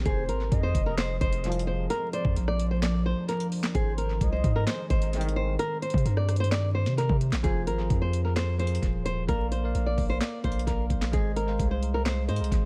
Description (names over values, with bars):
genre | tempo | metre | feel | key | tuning
hip hop, trap | 130 BPM | 4/4 | half-time | F dorian | A4 = 440 Hz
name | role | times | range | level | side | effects
deep dark ambient pad | sustained chords | 0.0-7.4 s | Eb3 to Bb4 | -38 LUFS | equal | chorus, built-in reverb
long sustained 808-style bass | bass | 0.0-12.7 s | Eb1 to C3 | -30 LUFS | equal | none
nylon-string guitar | melody | 0.1-12.7 s | Ab4 to D5 | -34 LUFS | equal | low-pass filter, tape echo
gliding portamento lead | second line | 0.1-6.0 s | C5 to Eb5 | -41 LUFS | equal | chorus, tape echo
trap drum kit | drums | 0.1-12.6 s | handclaps, hi-hat, kick drum, rim click, snare drum | -32 LUFS | equal | vintage 12-bit sampler grit
warm brass ensemble | stabs | 1.4-1.9, 5.1-5.6 s | C2 to F3 | -35 LUFS | equal | none
bell-like tine electric piano | accompaniment | 7.4-12.7 s | F3 to F5 | -36 LUFS | equal | low-pass filter
room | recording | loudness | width
little or no reverb | echo-heavy mix, vinyl crackle | -27 LUFS | mono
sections
0.0-7.4 A section; 7.4-12.7 B section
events
none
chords
0.1 Fm; 1.9 Bb; 3.7 Ab; 5.6 Cm; 7.4 Fm; 9.3 Bb; 11.1 Ab